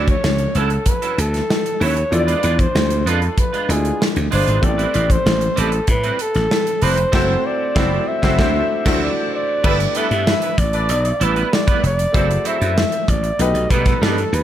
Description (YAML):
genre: polished 1980s jazz-funk pop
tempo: 96 BPM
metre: 4/4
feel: straight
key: unclear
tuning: A4 = 439 Hz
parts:
  - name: warm flugelhorn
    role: melody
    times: 0.0-14.4 s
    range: G#4 to E5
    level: -21 LUFS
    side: equal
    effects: none
  - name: clear baby grand piano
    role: accompaniment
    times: 0.0-14.4 s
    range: F3 to D5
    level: -26 LUFS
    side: left 2 dB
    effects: analog chorus
  - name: clean electric guitar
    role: riff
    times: 0.0-14.4 s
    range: F#3 to B4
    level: -25 LUFS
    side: right 6 dB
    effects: analog chorus
  - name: slap bass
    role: bass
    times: 0.0-14.4 s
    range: F1 to B2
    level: -19 LUFS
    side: equal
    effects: none
  - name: modern studio drum kit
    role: drums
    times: 0.1-14.4 s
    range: crash cymbal, hi-hat, kick drum, snare drum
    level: -20 LUFS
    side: equal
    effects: gated reverb
  - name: mellow horn section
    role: second line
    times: 9.6-11.2 s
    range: D4 to D5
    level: -26 LUFS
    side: equal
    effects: none
room: light reverb, small room ambience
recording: none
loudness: -15 LUFS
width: side -11 dB against mid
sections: 0.0-9.6 A section; 9.6-14.4 B section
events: band accent 7.1-9.6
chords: 0.0 Dmaj9; 2.1 E7b9; 4.6 Am9; 7.1 F#m7b5; 8.4 D9; 9.6 G69; 12.1 F#m7b5; 13.4 B7b13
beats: 0.24 0.86 1.49 | 2.12 2.75 3.37 4.00 | 4.63 5.26 5.88 6.51 | 7.14 7.76 8.39 9.02 | 9.64 10.27 10.90 11.52 | 12.15 12.77 13.40 14.03